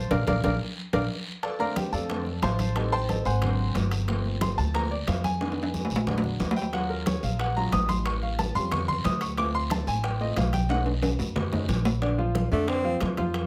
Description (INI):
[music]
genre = Afro-Cuban jazz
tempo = 181 BPM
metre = 4/4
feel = straight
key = Bb major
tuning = A4 = 437 Hz
[part]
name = clear concert grand piano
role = accompaniment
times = 0.0-13.5 s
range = D3 to Eb6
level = -31 LUFS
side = equal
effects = none
[part]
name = upright bass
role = bass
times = 0.0-13.5 s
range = G1 to F#2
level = -31 LUFS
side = equal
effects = none
[part]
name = bongos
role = percussion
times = 0.1-13.5 s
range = none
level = -40 LUFS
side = equal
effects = none
[part]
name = congas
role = percussion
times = 0.1-13.5 s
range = none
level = -35 LUFS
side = equal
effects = none
[part]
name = guiro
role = percussion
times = 0.1-12.0 s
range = none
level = -44 LUFS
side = equal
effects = none
[part]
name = timbales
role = percussion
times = 0.1-13.5 s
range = none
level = -34 LUFS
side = equal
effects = none
[part]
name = breathy tenor saxophone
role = melody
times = 12.5-13.0 s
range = A3 to C4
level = -29 LUFS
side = equal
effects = none
[sound]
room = moderate small room reverb, RT60 0.5 s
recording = none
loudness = -27 LUFS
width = mono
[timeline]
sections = 0.0-1.4 A section; 1.4-12.0 A section; 12.0-13.5 A section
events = grand piano solo 0.0-12.0; drum fill 0.1-1.4, 5.4-6.7, 10.7-12.0; band accent 0.1-1.4; tenor saxophone solo 12.0-13.5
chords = 0.0 Bbadd9; 1.4 Bbmaj9; 2.8 Am7b5; 3.4 Ab7#11; 4.1 Gm11; 5.4 Fm7b5; 6.1 Bb7b13; 6.7 Ebm11; 8.1 Aaug7; 9.4 Dm7; 10.7 B13; 12.0 Bbadd9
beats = | 0.11 0.44 0.77 1.10 | 1.44 1.77 2.10 2.43 | 2.76 3.09 3.42 3.75 | 4.08 4.42 4.75 5.08 | 5.41 5.74 6.07 6.40 | 6.73 7.06 7.39 7.73 | 8.06 8.39 8.72 9.05 | 9.38 9.71 10.04 10.37 | 10.70 11.03 11.36 11.69 | 12.02 12.35 12.69 13.02 | 13.35